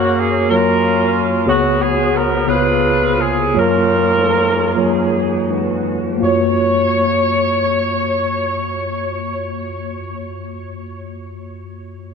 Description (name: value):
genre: gospel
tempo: 37-61 BPM (dotted quarters)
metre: 6/8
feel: straight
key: F# major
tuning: A4 = 439 Hz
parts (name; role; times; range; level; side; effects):
- clear saxophone section; melody; 0.0-9.7 s; A#3 to C#5; -17 LUFS; equal; tape echo
- mellow tine electric piano; accompaniment; 0.0-12.1 s; C#2 to E#5; -18 LUFS; equal; medium stereo tremolo, tape echo
room: moderate echo chamber reverb, RT60 2.3 s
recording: echo-heavy mix, nothing above 10.4 kHz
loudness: -14 LUFS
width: side -6 dB against mid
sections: 0.0-6.2 A section; 6.2-12.1 B section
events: slowing down 1.5-6.2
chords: 0.0 F#maj7; 1.5 C#7sus4; 2.5 C#7; 3.5 F#maj7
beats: 0.49 | 1.47 2.47 | 3.55 4.76 | 6.22 7.85 | 9.47 11.11